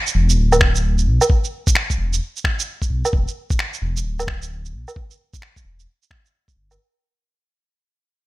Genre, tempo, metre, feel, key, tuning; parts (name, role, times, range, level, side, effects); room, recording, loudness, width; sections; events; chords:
future garage; 131 BPM; 4/4; swing 63% on 16ths; E minor; A4 = 444 Hz
dark detuned saw bass; bass; 0.1-6.8 s; D1 to B1; -19 LUFS; equal; tube saturation
electronic shaker, woodblock and finger snaps; drums; 0.1-6.8 s; -21 LUFS; right 2 dB; studio reverb
electronic kick drum; drums; 0.6-6.5 s; -20 LUFS; equal; studio reverb
little or no reverb; -17 LUFS; side -19 dB against mid
0.0-6.8 A section
fade-out 0.0-6.8